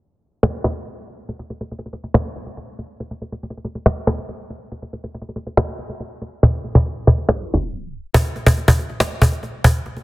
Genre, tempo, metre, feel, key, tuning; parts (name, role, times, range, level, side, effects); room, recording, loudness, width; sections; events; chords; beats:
hip hop; 140 BPM; 4/4; half-time
cajon; drums; 0.4-10.0 s; -17 LUFS; equal
light reverb, small room ambience; dense, heavily limited modern master, low-pass filter, tape stop; -16 LUFS; side -20 dB against mid
0.0-8.1 A section; 8.1-10.0 B section
break 0.0-1.3; filter sweep 0.0-8.1; kick muted 0.4-1.3; tape stop 7.3-8.1
0.00 0.43 0.86 | 1.29 1.72 2.14 2.57 | 3.00 3.43 3.86 4.29 | 4.72 5.14 5.57 6.00 | 6.43 6.86 7.29 7.72 | 8.14 8.57 9.00 9.43 | 9.86